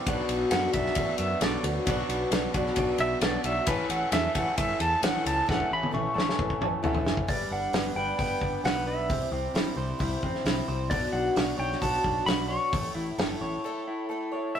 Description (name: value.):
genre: folk rock and heartland rock.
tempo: 133 BPM.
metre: 4/4.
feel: straight.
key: unclear.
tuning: A4 = 440 Hz.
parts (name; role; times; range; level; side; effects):
picked twelve-string acoustic guitar; accompaniment; 0.0-14.6 s; A2 to C#5; -34 LUFS; left 3 dB; none.
electric guitar through a small old amp; riff; 0.0-14.6 s; A2 to C#5; -32 LUFS; right 1 dB; spring reverb.
dark upright piano; accompaniment; 0.1-7.3 s; D4 to A5; -36 LUFS; equal; none.
picked electric bass; bass; 0.1-13.6 s; F#1 to F#2; -34 LUFS; equal; none.
loose indie drum kit; drums; 0.1-13.3 s; hi-hat, kick drum, ride cymbal, snare drum, toms; -30 LUFS; equal; none.
pedal steel guitar; melody; 0.5-14.6 s; B4 to C#6; -29 LUFS; equal; none.
room: light reverb.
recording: rough rehearsal-room recording.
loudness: -25 LUFS.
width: side -8 dB against mid.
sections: 0.0-7.3 A section; 7.3-14.6 B section.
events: pedal steel guitar solo 0.0-7.3; drum fill 5.5-7.3; upright piano fill 6.4-7.3; break 13.6-14.6.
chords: 0.1 Bm; 3.7 A; 7.3 G; 9.1 C; 10.9 Bmadd9; 12.7 A.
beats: | 0.07 0.52 0.97 1.42 | 1.87 2.32 2.77 3.22 | 3.67 4.12 4.57 5.03 | 5.48 5.93 6.38 6.83 | 7.28 7.74 8.19 8.64 | 9.09 9.55 10.00 10.46 | 10.91 11.37 11.82 12.28 | 12.73 13.19 13.64 14.10 | 14.55.